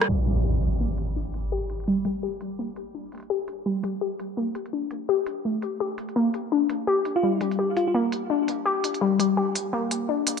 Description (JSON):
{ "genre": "half-time drum and bass", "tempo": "168 BPM", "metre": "4/4", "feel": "swing 59% on 16ths, half-time", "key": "G minor", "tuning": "A4 = 440 Hz", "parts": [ { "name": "drum and bass drum kit", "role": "drums", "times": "0.0-10.4 s", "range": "hi-hat, rim click", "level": "-28 LUFS", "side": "right 2 dB", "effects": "none" }, { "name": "warbly dusty pluck", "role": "arpeggios", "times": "0.1-10.4 s", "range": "G3 to G4", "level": "-25 LUFS", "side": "left 3 dB", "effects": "chorus, cassette tape, dub echo" }, { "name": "impact", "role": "sound effects", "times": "0.1-1.5 s", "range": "none", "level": "-25 LUFS", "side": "equal", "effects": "none" }, { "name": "bell-like FM electric piano", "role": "melody", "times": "7.2-7.9 s", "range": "F4", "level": "-28 LUFS", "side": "right 2 dB", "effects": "chorus, tremolo, dub echo" } ], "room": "moderate echo chamber reverb, RT60 1.8 s", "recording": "low-pass filter", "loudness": "-23 LUFS", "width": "side -6 dB against mid", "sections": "0.1-10.4 A section", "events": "impact 0.1-1.5; filter sweep on synth pluck 0.1-10.4; filter sweep 0.1-10.4", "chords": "0.1 G5" }